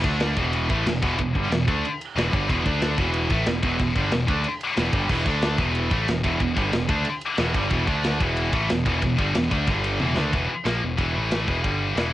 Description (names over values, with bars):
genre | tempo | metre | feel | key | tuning
heavy metal | 184 BPM | 4/4 | straight | E minor | A4 = 439 Hz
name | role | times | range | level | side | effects
distorted electric guitar | riff | 0.0-10.3 s | E2 to D4 | -29 LUFS | right 2 dB | distortion, cassette tape
heavy high-gain guitar | riff | 0.0-12.1 s | E2 to D4 | -25 LUFS | left 4 dB | distortion, cassette tape
tight distorted guitar | riff | 0.0-12.1 s | E2 to D4 | -31 LUFS | right 8 dB | distortion, cassette tape
growling picked electric bass | bass | 0.0-12.1 s | E1 to D2 | -27 LUFS | equal | overdrive
tight metal drum kit | drums | 0.0-12.1 s | crash cymbal, kick drum, ride cymbal, snare drum, toms | -27 LUFS | equal | none
room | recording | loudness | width
light reverb | home recording on cassette | -21 LUFS | side -14 dB against mid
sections
0.0-10.3 A section; 10.3-12.1 B section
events
drum fill 10.0-10.3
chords
0.0 D5; 0.4 Em; 2.7 D5; 3.0 Em; 5.3 D5; 5.6 Em; 7.9 D5; 8.2 Em; 9.7 G5; 10.0 E5; 11.2 A5; 11.5 E5; 11.6 G5